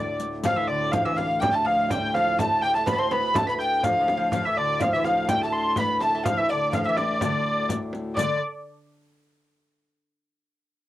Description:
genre	medieval dance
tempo	124 BPM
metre	2/4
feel	straight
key	D dorian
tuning	A4 = 440 Hz
part	dark hurdy-gurdy	melody	0.0-8.4 s	D5 to C6	-24 LUFS	equal	cassette tape
part	lute	second line	0.0-8.4 s	D3 to C4	-31 LUFS	right 4 dB	cassette tape
part	mellow hollow soprano recorder	second line	0.0-8.4 s	D5 to C6	-28 LUFS	left 3 dB	cassette tape
part	hand-pumped harmonium	drone	0.0-8.2 s	D2 to A2	-32 LUFS	left 1 dB	cassette tape
part	riq	percussion	0.2-8.4 s	none	-34 LUFS	left 6 dB	none
part	frame drum	percussion	0.5-8.4 s	none	-30 LUFS	right 1 dB	none
room	moderate booth ambience, RT60 0.1 s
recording	home recording on cassette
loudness	-21 LUFS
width	side -14 dB against mid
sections	0.4-8.2 A section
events	none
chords	none

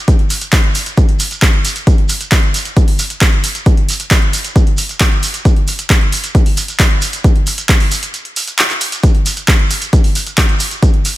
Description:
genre	trance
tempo	134 BPM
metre	4/4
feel	straight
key	none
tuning	none
part	electronic kick drum	drums	0.1-10.9 s	none	-11 LUFS	equal	overdrive
part	punchy analog drum machine	drums	0.1-11.1 s	handclaps, hi-hat	-17 LUFS	equal	overdrive
part	shekere	percussion	0.1-11.1 s	none	-23 LUFS	right 3 dB	none
room	digital ambience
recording	none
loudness	-11 LUFS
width	side -16 dB against mid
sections	0.0-11.2 A section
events	break 8.1-9.0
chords	none

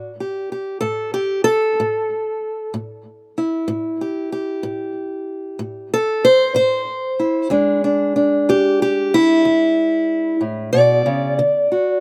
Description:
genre	acoustic country blues, solo or duo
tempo	62 BPM (dotted quarters)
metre	12/8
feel	straight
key	unclear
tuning	A4 = 436 Hz
part	fingerpicked steel-string acoustic guitar	solo	0.0-12.0 s	E2 to D5	-19 LUFS	equal	none
room	little or no reverb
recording	recorded outdoors, with no room sound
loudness	-18 LUFS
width	mono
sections	0.0-12.0 A section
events	steel-string acoustic guitar solo 0.0-12.0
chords	0.0 A5; 7.5 E7; 11.4 D

